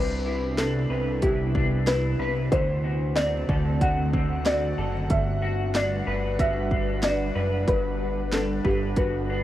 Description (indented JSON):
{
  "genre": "dream pop",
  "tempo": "93 BPM",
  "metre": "4/4",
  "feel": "straight",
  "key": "G major",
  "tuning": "A4 = 440 Hz",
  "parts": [
    { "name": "felt-muted upright piano", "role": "melody", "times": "0.0-9.4 s", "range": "G4 to F#5", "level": "-28 LUFS", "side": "equal", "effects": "tape echo" },
    { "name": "ethereal airy pad", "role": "sustained chords", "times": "0.0-9.4 s", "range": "C3 to F#5", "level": "-30 LUFS", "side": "right 1 dB", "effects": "ensemble chorus, built-in reverb" },
    { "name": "electric guitar through a small old amp", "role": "arpeggios", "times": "0.0-9.4 s", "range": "G2 to B4", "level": "-32 LUFS", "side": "left 2 dB", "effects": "analog chorus, tape echo" },
    { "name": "fat analog bass", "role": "bass", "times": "0.0-9.4 s", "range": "F#1 to D2", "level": "-28 LUFS", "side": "equal", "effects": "none" },
    { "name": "house drum kit", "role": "drums", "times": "0.6-9.1 s", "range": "hi-hat, kick drum, snare drum", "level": "-27 LUFS", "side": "equal", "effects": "none" }
  ],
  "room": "light reverb",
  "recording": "worn, warbling old tape, cassette tape, warbly pitch drift",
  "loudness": "-22 LUFS",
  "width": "side -13 dB against mid",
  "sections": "0.0-9.4 A section",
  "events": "none",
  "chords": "0.0 Cmaj9; 2.5 D7; 5.1 Gmaj7"
}